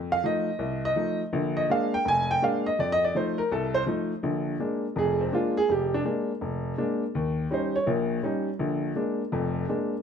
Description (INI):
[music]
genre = solo jazz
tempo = 165 BPM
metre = 4/4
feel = swing 65% on 8ths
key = Bb mixolydian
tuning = A4 = 440 Hz
[part]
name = warm upright piano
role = solo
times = 0.0-9.9 s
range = F1 to Ab5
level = -24 LUFS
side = equal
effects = none
[sound]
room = moderate large studio reverb, RT60 1.2 s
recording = band playing live in one room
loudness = -24 LUFS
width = side -7 dB against mid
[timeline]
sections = 0.0-4.2 A section; 4.2-10.0 A section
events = upright piano solo 0.0-4.2, 4.2-10.0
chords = 0.0 F7; 1.3 Bb7; 2.8 F7; 4.2 Bb7; 7.1 Eb7; 8.6 Bb7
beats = 0.23 0.60 0.96 | 1.32 1.69 2.05 2.41 | 2.78 3.14 3.50 3.87 | 4.23 4.59 4.96 5.32 | 5.68 6.05 6.41 6.78 | 7.14 7.50 7.87 8.23 | 8.59 8.96 9.32 9.68